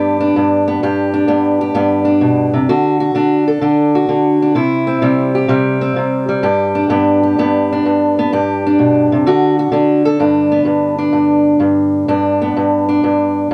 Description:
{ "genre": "blues", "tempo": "128 BPM", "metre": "4/4", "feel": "swing 68% on 8ths", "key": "G major", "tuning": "A4 = 441 Hz", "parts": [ { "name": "fingerpicked steel-string acoustic guitar", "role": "solo", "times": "0.0-13.5 s", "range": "G2 to A4", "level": "-14 LUFS", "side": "equal", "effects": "none" } ], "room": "light reverb", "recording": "close, detailed microphones", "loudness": "-14 LUFS", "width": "mono", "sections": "0.0-10.2 A section; 10.2-13.5 B section", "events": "none", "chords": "0.0 G; 2.7 D; 4.6 C; 6.4 G; 9.3 D; 10.2 G" }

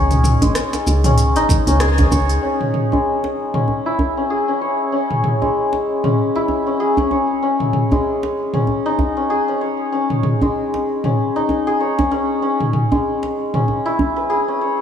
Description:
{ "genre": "organic downtempo", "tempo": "96 BPM", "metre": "4/4", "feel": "swing 58% on 16ths", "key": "C# minor", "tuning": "A4 = 436 Hz", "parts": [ { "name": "santur", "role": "arpeggios", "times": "0.0-14.8 s", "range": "G#3 to C#5", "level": "-18 LUFS", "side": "left 2 dB", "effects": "vintage 12-bit sampler grit, low-pass filter, digital delay" }, { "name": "woody FM bass", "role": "bass", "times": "0.0-2.4 s", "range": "G#1 to C#2", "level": "-16 LUFS", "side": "equal", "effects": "sidechain pumping" }, { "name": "deep house drum kit", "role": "drums", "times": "0.1-13.6 s", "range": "hi-hat, rim click, shaker, toms", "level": "-20 LUFS", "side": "right 1 dB", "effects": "none" }, { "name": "djembe", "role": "percussion", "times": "0.1-14.1 s", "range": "none", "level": "-22 LUFS", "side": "right 2 dB", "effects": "none" }, { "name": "electronic kick drum", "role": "drums", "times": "1.5-2.3 s", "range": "none", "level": "-18 LUFS", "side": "equal", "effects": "none" }, { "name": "bronze singing bowl", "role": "texture", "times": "2.4-14.8 s", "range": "C#5", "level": "-33 LUFS", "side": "right 5 dB", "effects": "none" } ], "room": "moderate lush hall reverb, RT60 2.3 s", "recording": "small room ambience", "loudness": "-15 LUFS", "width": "side -8 dB against mid", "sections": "0.0-2.4 A section; 2.4-14.8 B section", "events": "band accent 1.8-2.1", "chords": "0.0 G#sus4; 2.4 C#m; 12.4 C#m7" }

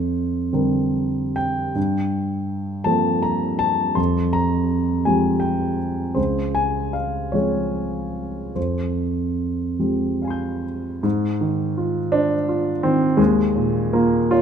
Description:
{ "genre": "classical, impressionist solo piano", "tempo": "46-58 BPM (dotted quarters)", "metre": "6/8", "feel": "rubato", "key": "F minor", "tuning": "A4 = 440 Hz", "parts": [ { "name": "warm baby grand piano", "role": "solo", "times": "0.0-14.4 s", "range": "Db2 to G6", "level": "-19 LUFS", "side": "equal", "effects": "none" } ], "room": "moderate recital hall reverb, RT60 1.7 s", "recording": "close, detailed microphones", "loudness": "-19 LUFS", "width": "side -8 dB against mid", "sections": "0.0-11.0 A section; 11.0-14.4 B section", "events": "none", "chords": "0.0 C9sus4/F; 1.8 Gm11; 4.0 Fmadd9; 6.2 Dbmaj7; 8.6 Fmadd9; 11.0 Ab6; 13.2 Ebsus4" }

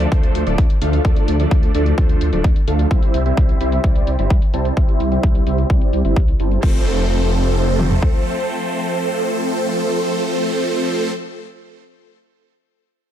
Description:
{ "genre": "EDM, festival progressive house", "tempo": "129 BPM", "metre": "4/4", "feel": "straight", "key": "F major", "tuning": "A4 = 440 Hz", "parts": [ { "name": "supersaw chords", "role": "riff", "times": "0.0-11.1 s", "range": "F3 to A5", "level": "-20 LUFS", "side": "right 1 dB", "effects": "phaser, sidechain pumping, low-pass filter, ping-pong delay" }, { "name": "wide detuned saw bass", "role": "bass", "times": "0.0-8.0 s", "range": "D1 to D2", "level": "-19 LUFS", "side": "equal", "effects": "chorus, tube saturation, sidechain pumping" }, { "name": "pop drum kit", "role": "drums", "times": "0.0-6.7 s", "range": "crash cymbal, hi-hat", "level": "-38 LUFS", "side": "left 6 dB", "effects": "low-pass filter on hats, low-pass filter on snare, low-pass filter on cymbals" }, { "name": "big-room dance drum kit", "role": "drums", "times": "0.1-8.1 s", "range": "kick drum, toms", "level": "-15 LUFS", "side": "equal", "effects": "overdrive" } ], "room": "digital ambience", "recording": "none", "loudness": "-15 LUFS", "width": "side -10 dB against mid", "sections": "0.0-6.6 A section; 6.6-10.3 B section", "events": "filter sweep on supersaw synth 0.0-6.6; filter sweep on detuned saw bass 0.0-6.6", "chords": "0.0 Dm; 2.9 C; 6.6 F" }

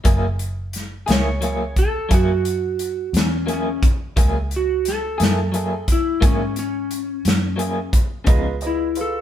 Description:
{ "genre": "slow blues", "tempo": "58 BPM (dotted quarters)", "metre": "12/8", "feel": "straight", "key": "F# mixolydian", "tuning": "A4 = 440 Hz", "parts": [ { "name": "electric guitar through a small old amp", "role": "accompaniment", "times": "0.0-8.5 s", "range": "C#3 to G#4", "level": "-25 LUFS", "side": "left 1 dB", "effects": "tremolo" }, { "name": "vintage muted fingered electric bass", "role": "bass", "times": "0.0-9.2 s", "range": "F#1 to G#2", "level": "-24 LUFS", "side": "equal", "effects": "none" }, { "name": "natural country drum kit", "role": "drums", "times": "0.0-9.1 s", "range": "hi-hat, kick drum, snare drum", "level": "-19 LUFS", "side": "equal", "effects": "none" }, { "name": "electric slide guitar", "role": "melody", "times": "1.1-9.2 s", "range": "C#4 to C#5", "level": "-23 LUFS", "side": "equal", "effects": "none" }, { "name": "warm baby grand piano", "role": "accompaniment", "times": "8.3-9.2 s", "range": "E#4 to E#5", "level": "-26 LUFS", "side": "right 6 dB", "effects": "none" } ], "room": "light reverb", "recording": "band playing live in one room", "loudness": "-18 LUFS", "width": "side -10 dB against mid", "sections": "0.0-9.2 A section", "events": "none", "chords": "0.0 F#9; 8.3 C#9" }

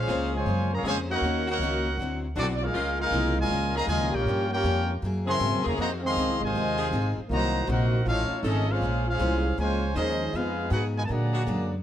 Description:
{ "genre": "jazz, big band swing", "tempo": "158 BPM", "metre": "4/4", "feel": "swing 66% on 8ths", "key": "Bb minor", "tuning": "A4 = 442 Hz", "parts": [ { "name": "clear trumpet section", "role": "melody", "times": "0.0-11.7 s", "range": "C4 to C6", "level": "-28 LUFS", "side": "left 1 dB", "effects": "none" }, { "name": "clear trombone section", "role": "second line", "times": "0.0-11.7 s", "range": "Bb2 to G4", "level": "-31 LUFS", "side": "right 1 dB", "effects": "none" }, { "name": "upright bass", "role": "bass", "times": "0.0-11.8 s", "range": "Ab1 to Bb2", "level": "-28 LUFS", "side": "equal", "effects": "none" }, { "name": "picked acoustic archtop guitar", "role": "accompaniment", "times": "0.1-11.7 s", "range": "G2 to C5", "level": "-34 LUFS", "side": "left 4 dB", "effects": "none" }, { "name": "edgy saxophone section", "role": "sustained chords", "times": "0.1-11.4 s", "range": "Db3 to C5", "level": "-38 LUFS", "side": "left 1 dB", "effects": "none" } ], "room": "light reverb", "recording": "none", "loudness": "-24 LUFS", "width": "side -11 dB against mid", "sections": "0.0-11.8 A section", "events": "none", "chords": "0.0 Bbm9; 1.2 Ebm7; 2.0 D9; 2.7 Db69; 4.3 Gm7b5; 5.0 Gb9; 5.8 Fm7; 7.3 Cm7b5; 8.1 F7alt; 8.8 Bbm9; 10.3 Fm7b5; 11.1 Bbaug7" }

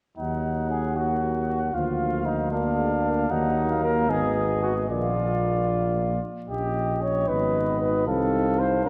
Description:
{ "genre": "classical, brass quintet", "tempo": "76 BPM (dotted quarters)", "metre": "6/8", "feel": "straight", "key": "Eb minor", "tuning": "A4 = 443 Hz", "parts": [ { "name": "mellow trumpet", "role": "melody", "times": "0.2-8.9 s", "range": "D5 to Gb5", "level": "-32 LUFS", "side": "equal", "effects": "none" }, { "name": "warm flugelhorn", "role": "second line", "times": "0.2-8.9 s", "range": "D4 to Db5", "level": "-30 LUFS", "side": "equal", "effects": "none" }, { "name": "mellow French horn", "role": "accompaniment", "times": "0.2-8.9 s", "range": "F3 to Db4", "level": "-35 LUFS", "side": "equal", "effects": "none" }, { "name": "mellow euphonium", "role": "accompaniment", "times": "0.2-8.9 s", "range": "Bb3 to Eb4", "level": "-34 LUFS", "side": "equal", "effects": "none" }, { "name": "dark bass trombone", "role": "bass", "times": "0.2-8.9 s", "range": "Ab1 to Eb2", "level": "-30 LUFS", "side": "equal", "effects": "transformer saturation" } ], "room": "wet concert hall reverb, RT60 2.5 s", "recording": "worn, warbling old tape, cassette tape, vinyl crackle, warbly pitch drift", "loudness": "-25 LUFS", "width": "mono", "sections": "0.2-8.9 A section", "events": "none", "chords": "0.2 Ebm; 1.7 Bb/D; 3.3 Ebm; 4.1 Abm; 4.9 Bb; 6.5 Eb7/Bb; 7.3 Abm; 8.1 F7/C" }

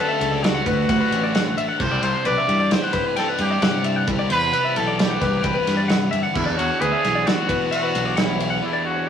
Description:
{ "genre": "math rock and midwest emo", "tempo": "132 BPM", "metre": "5/4", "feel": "straight", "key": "unclear", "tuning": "A4 = 440 Hz", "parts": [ { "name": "clear trumpet", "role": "melody", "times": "0.0-9.1 s", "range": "E4 to D5", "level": "-24 LUFS", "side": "right 1 dB", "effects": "tape echo" }, { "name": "electric guitar at the edge of break-up", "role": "accompaniment", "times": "0.0-9.1 s", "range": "E2 to E4", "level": "-29 LUFS", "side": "right 4 dB", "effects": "none" }, { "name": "twelve-string electric guitar", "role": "arpeggios", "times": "0.0-9.1 s", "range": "B4 to G5", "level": "-25 LUFS", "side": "left 5 dB", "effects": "none" }, { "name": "biting overdriven guitar", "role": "riff", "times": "0.0-9.1 s", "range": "C3 to G#4", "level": "-32 LUFS", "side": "left 1 dB", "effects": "none" }, { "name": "growling fingered electric bass", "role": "bass", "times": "0.2-8.6 s", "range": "A1 to G2", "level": "-25 LUFS", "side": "left 1 dB", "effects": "overdrive" }, { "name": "loose indie drum kit", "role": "drums", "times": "0.2-8.5 s", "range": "crash cymbal, kick drum, ride cymbal, snare drum", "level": "-23 LUFS", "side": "equal", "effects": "none" } ], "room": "light reverb", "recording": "rough rehearsal-room recording, small room ambience", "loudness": "-18 LUFS", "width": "side -8 dB against mid", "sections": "0.0-9.1 A section", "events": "break 8.6-9.1", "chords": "0.0 Dmaj7; 1.8 Cmaj9; 6.4 E9" }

